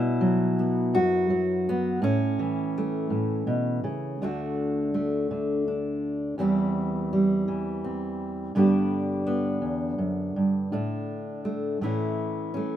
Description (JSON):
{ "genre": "folk, solo fingerstyle acoustic guitar", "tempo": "55 BPM (dotted quarters)", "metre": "6/8", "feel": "straight", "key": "D major", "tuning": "A4 = 435 Hz", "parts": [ { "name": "fingerpicked steel-string acoustic guitar", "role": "solo", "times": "0.0-12.8 s", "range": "D2 to G4", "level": "-24 LUFS", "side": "equal", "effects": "none" } ], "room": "moderate studio ambience, RT60 0.5 s", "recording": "minimal, uncompressed stereo recording", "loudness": "-24 LUFS", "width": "side -10 dB against mid", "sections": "0.0-4.2 A section; 4.2-12.8 B section", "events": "none", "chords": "0.0 B5; 2.0 A; 4.2 D; 6.4 C/E; 8.5 G; 10.7 Asus4; 11.8 A", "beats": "0.94 | 2.03 3.12 | 4.21 5.30 | 6.38 7.47 | 8.55 9.63 | 10.72 11.82" }